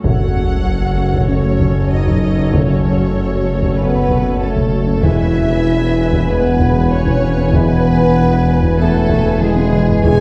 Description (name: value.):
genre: cinematic, hybrid orchestral and electronic film score.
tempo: 96 BPM.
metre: 4/4.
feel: straight.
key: F# minor.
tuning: A4 = 440 Hz.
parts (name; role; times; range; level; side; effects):
warm symphonic violin section; melody; 0.0-10.2 s; G#4 to G#5; -31 LUFS; equal; none.
warm symphonic violin section; second line; 0.0-10.2 s; G#4 to G#5; -28 LUFS; equal; none.
rich symphonic viola section; accompaniment; 0.0-10.2 s; A4 to G#5; -29 LUFS; equal; none.
dark French horn section; sustained chords; 0.0-10.2 s; G#3 to G#4; -22 LUFS; equal; none.
glassy FM pad; sustained chords; 0.0-10.2 s; E3 to G#5; -25 LUFS; equal; ensemble chorus, built-in reverb.
warm trombone section; sustained chords; 0.0-10.2 s; C#3 to B3; -28 LUFS; equal; none.
harp-like synth pluck; arpeggios; 0.0-10.1 s; C#3 to F#4; -27 LUFS; equal; none.
dark symphonic cello section; bass; 0.0-10.2 s; E2 to F#2; -26 LUFS; equal; none.
sub bass with octave; bass; 0.0-10.2 s; E1 to F#1; -24 LUFS; equal; none.
warm symphonic double bass section; bass; 0.0-10.2 s; E1 to F#1; -24 LUFS; equal; none.
warm tuba; bass; 0.0-10.2 s; E1 to F#1; -25 LUFS; equal; none.
solo taiko drums; drums; 0.0-10.2 s; none; -22 LUFS; equal; none.
sub drop; sound effects; 0.0-2.5 s; none; -25 LUFS; equal; none.
room: wet scoring stage reverb, RT60 1.7 s.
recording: heard from further back in the room.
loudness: -14 LUFS.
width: mono.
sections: 0.0-10.2 A section.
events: impact 0.0-2.5; drum fill 9.4-10.0.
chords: 0.0 F#m; 5.0 E.